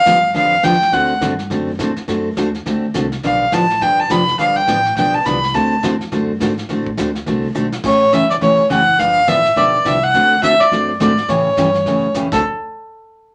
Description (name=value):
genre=country, western swing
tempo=209 BPM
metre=4/4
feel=swing 61% on 8ths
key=D mixolydian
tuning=A4 = 442 Hz
part: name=clear fiddle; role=melody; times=0.0-1.2, 3.2-5.8, 7.8-12.4 s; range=A4 to B5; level=-16 LUFS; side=equal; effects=none
part: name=picked steel-string acoustic guitar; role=accompaniment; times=0.1-12.4 s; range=C#3 to A4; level=-21 LUFS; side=equal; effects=none
part: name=upright bass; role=bass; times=0.1-12.4 s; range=E1 to A2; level=-31 LUFS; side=equal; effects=none
part: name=vintage brush drum kit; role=drums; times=0.1-12.4 s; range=brushed snare drum, crash cymbal, hi-hat, kick drum, snare drum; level=-30 LUFS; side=equal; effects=none
room=wet small room ambience, RT60 0.5 s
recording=none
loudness=-16 LUFS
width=mono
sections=0.0-12.4 A section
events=drum fill 7.6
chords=0.0 G7; 0.9 D7; 3.2 G7; 5.5 D7; 7.8 A7; 9.0 G7; 10.1 D7; 11.3 A7; 12.3 D7; 12.4 N.C.